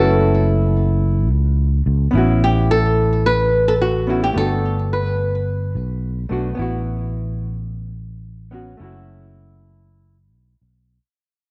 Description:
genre	sunset chillout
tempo	108 BPM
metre	4/4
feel	straight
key	A mixolydian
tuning	A4 = 440 Hz
part	flamenco guitar	melody	0.0-6.3 s	F#4 to B4	-22 LUFS	equal	vintage 12-bit sampler grit
part	hollow-body jazz guitar	accompaniment	0.0-10.2 s	A3 to F#4	-25 LUFS	equal	low-pass filter, digital delay
part	sustaining fretless electric bass	bass	0.0-11.0 s	F#1 to C#2	-21 LUFS	equal	none
room	light reverb, studio reverb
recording	worn, warbling old tape, cassette tape, warbly pitch drift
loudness	-18 LUFS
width	mono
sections	0.0-2.1 A section; 2.1-11.0 B section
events	fade-out 2.1-11.0; filter sweep on hollow-body jazz guitar 2.1-11.0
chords	0.0 F#m7; 2.1 A69; 4.4 Gmaj9; 6.6 Asus2; 8.8 F#m7

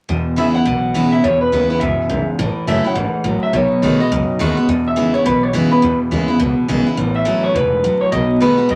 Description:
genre	rockabilly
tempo	209 BPM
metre	4/4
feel	swing 62% on 8ths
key	E major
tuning	A4 = 440 Hz
part	picked steel-string acoustic guitar	accompaniment	0.1-8.8 s	E2 to F#4	-20 LUFS	equal	none
part	electric guitar through a small old amp	riff	0.1-8.8 s	E2 to G#3	-24 LUFS	equal	none
part	upright bass	bass	0.1-8.8 s	E1 to E2	-26 LUFS	equal	none
part	electric guitar through a small old amp	melody	0.4-8.8 s	B4 to F#5	-20 LUFS	equal	none
room	light reverb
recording	vinyl crackle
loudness	-16 LUFS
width	mono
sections	0.1-4.7 A section; 4.7-8.8 B section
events	none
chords	0.1 E; 2.4 A; 3.5 B7; 4.7 E; 7.0 A; 8.1 B7

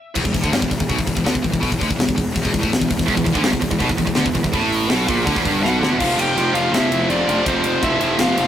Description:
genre	heavy metal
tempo	164 BPM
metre	4/4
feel	straight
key	E minor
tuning	A4 = 441 Hz
part	tight distorted guitar	riff	0.1-8.5 s	E2 to F3	-25 LUFS	equal	distortion
part	scooped high-gain guitar	riff	0.2-8.5 s	E2 to F3	-24 LUFS	left 5 dB	distortion
part	fuzz picked electric bass	bass	0.2-8.5 s	E1 to D2	-24 LUFS	equal	overdrive
part	tight metal drum kit	drums	0.2-8.5 s	crash cymbal, hi-hat, kick drum, ride cymbal, snare drum	-22 LUFS	equal	none
part	tight distorted guitar	riff	3.1-8.5 s	E2 to F3	-22 LUFS	right 5 dB	distortion
part	high-gain lead guitar	melody	5.6-8.5 s	C5 to G5	-23 LUFS	left 3 dB	distortion, tape echo
part	high-gain lead guitar	second line	5.7-8.5 s	C4 to G4	-27 LUFS	right 2 dB	distortion
room	moderate stone room reverb, RT60 1.2 s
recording	rough rehearsal-room recording, tube saturation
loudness	-16 LUFS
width	side -10 dB against mid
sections	0.2-6.0 A section; 6.0-8.5 B section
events	stop 0.0; drum fill 5.6-6.0; half time 6.0-8.5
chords	0.2 Em; 6.0 F5

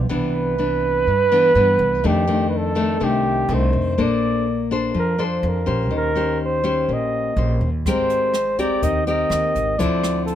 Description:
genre	bossa nova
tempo	124 BPM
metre	4/4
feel	straight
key	unclear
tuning	A4 = 440 Hz
part	nylon-string guitar	accompaniment	0.0-10.3 s	F2 to C5	-21 LUFS	left 3 dB	none
part	upright bass	bass	0.0-10.3 s	Ab1 to G2	-24 LUFS	right 1 dB	none
part	breathy flugelhorn	melody	0.1-10.3 s	G4 to Eb5	-20 LUFS	right 2 dB	none
part	jazz brush drum kit	drums	7.9-10.3 s	hi-hat, kick drum, rim click	-29 LUFS	right 1 dB	none
room	light reverb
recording	minimal, uncompressed stereo recording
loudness	-17 LUFS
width	side -10 dB against mid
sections	0.1-10.3 A section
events	none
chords	0.1 Cmaj9; 2.0 F13; 4.0 Bbmaj9; 5.9 Eb6; 7.9 Abmaj9; 9.8 Dm9

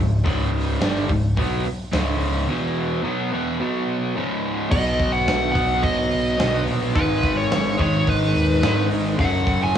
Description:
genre	hard rock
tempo	107 BPM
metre	4/4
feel	straight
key	C# minor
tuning	A4 = 441 Hz
part	cranked stack guitar	riff	0.0-9.8 s	C#2 to B3	-22 LUFS	equal	overdrive
part	picked electric bass	bass	0.0-9.8 s	C#1 to G#2	-25 LUFS	equal	none
part	huge arena drum kit	drums	0.3-9.8 s	crash cymbal, hi-hat, kick drum, snare drum	-25 LUFS	equal	cassette tape
part	nasal lead guitar with a parked wah	melody	4.7-9.8 s	B4 to G#5	-23 LUFS	equal	overdrive, tape echo
room	light reverb, studio reverb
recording	home recording on cassette, small room ambience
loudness	-19 LUFS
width	side -9 dB against mid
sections	0.0-4.7 A section; 4.7-9.8 B section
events	break 2.5-4.7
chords	0.0 C#5; 2.5 E5; 3.0 Esus2; 3.6 B5; 4.2 C#5; 4.7 B; 7.0 G#m; 9.2 F#5

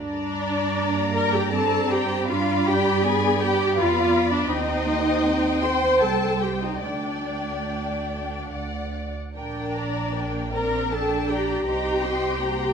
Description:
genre	classical, slow romantic movement for string orchestra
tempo	71-83 BPM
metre	3/4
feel	rubato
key	G minor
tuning	A4 = 437 Hz
part	warm symphonic violin section	melody	0.0-12.7 s	D5 to C6	-30 LUFS	left 7 dB	none
part	warm symphonic violin section	second line	0.0-12.7 s	Bb4 to C6	-28 LUFS	left 3 dB	none
part	warm symphonic viola section	accompaniment	0.0-12.7 s	D4 to C5	-24 LUFS	right 1 dB	none
part	rich symphonic double bass section	bass	0.0-12.7 s	Bb1 to G2	-30 LUFS	right 5 dB	none
part	rich symphonic cello section	bass	0.8-12.7 s	G3 to Eb4	-30 LUFS	right 4 dB	none
room	wet recital hall reverb, RT60 1.6 s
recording	none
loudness	-21 LUFS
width	side -6 dB against mid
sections	0.0-12.7 A section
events	none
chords	0.0 Gm; 2.3 G7; 4.5 Cm/Eb; 6.8 Dsus4; 9.3 Gm/Bb; 11.7 Cm7

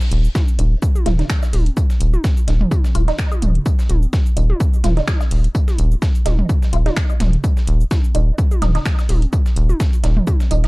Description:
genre	minimal techno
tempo	127 BPM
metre	4/4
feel	swing 55% on 16ths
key	unclear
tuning	A4 = 438 Hz
part	dusty soul sampler-style drum kit	drums	0.0-10.7 s	hi-hat, snare drum, tambourine	-35 LUFS	left 1 dB	sidechain pumping on perc, high-pass filter on perc, high-pass filter on snare, sidechain pumping on hats, high-pass filter on hats
part	house drum kit	drums	0.0-10.7 s	finger snaps, hi-hat, shaker	-30 LUFS	equal	overdrive
part	rubbery square bass	bass	0.1-10.7 s	Eb1	-16 LUFS	equal	sidechain pumping
part	electronic kick drum	drums	0.4-10.4 s	none	-17 LUFS	equal	overdrive
part	electronic toms	percussion	0.4-10.4 s	none	-26 LUFS	right 2 dB	digital delay
part	resonant blip pluck	riff	0.6-10.7 s	Eb4 to Eb5	-26 LUFS	right 2 dB	phaser, analog chorus, sidechain pumping, dub echo
room	little or no reverb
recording	dark, warm production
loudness	-15 LUFS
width	side -23 dB against mid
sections	0.0-10.7 A section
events	filter sweep on synth arpeggio sound 0.0-10.7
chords	0.0 Eb5

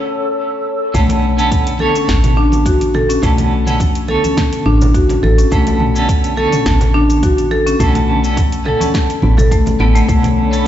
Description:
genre	organic downtempo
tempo	105 BPM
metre	4/4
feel	straight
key	B minor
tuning	A4 = 441 Hz
part	airy breathy pad	sustained chords	0.0-0.9, 10.1-10.7 s	A4 to E6	-22 LUFS	left 2 dB	chorus, sidechain pumping
part	clean electric guitar	accompaniment	0.9-10.7 s	D3 to C#5	-20 LUFS	right 3 dB	tremolo, sidechain pumping, tape echo
part	marimba with medium mallets	arpeggios	0.9-10.6 s	A3 to A4	-16 LUFS	left 2 dB	tape echo
part	woody FM bass	bass	0.9-10.7 s	A1 to B1	-15 LUFS	equal	tube saturation, sidechain pumping
part	deep house drum kit	drums	0.9-10.6 s	hi-hat, shaker, snare drum, toms	-24 LUFS	equal	overdrive
part	electronic kick drum	drums	0.9-10.2 s	none	-17 LUFS	equal	overdrive
part	congas	percussion	1.1-10.3 s	none	-23 LUFS	right 1 dB	none
room	light reverb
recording	played on a big sound system in a bare room, stone room reverb, nothing above 7.8 kHz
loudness	-11 LUFS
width	side -11 dB against mid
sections	0.9-10.7 A section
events	break 0.0-0.9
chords	0.0 B7sus2 (rootless); 0.9 Bm9

